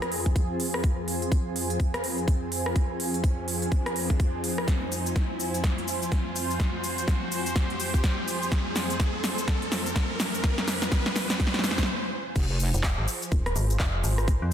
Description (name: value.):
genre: bass house.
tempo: 125 BPM.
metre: 4/4.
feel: swing 60% on 16ths.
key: F minor.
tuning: A4 = 440 Hz.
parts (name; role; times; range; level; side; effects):
sweeping resonant pad; sustained chords; 0.0-14.5 s; F2 to C5; -33 LUFS; right 1 dB; chorus, sidechain pumping.
big-room dance drum kit; drums; 0.0-14.4 s; crash cymbal, handclaps, hi-hat, rim click, shaker, snare drum; -30 LUFS; equal; overdrive.
riser; sound effects; 1.0-11.9 s; none; -36 LUFS; right 1 dB; none.
granular cloud pad; texture; 0.0-14.5 s; F4 to Ab5; -36 LUFS; equal; built-in reverb, sidechain pumping.
electronic kick drum; drums; 0.3-14.4 s; none; -25 LUFS; equal; none.
wobble bass; bass; 12.4-12.7 s; F1; -26 LUFS; equal; chorus, overdrive, sidechain pumping.
metallic FM bass; bass; 12.7-14.5 s; Eb1 to F2; -26 LUFS; equal; sidechain pumping.
room: light reverb.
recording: dense, heavily limited modern master.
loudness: -24 LUFS.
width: side -10 dB against mid.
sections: 0.0-12.4 A section; 12.4-14.5 B section.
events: build-up 0.0-12.4; riser 1.0-11.9; drum fill 4.7-11.9; stop 11.9-12.4; drop 12.4-14.5.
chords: 0.0 Fm.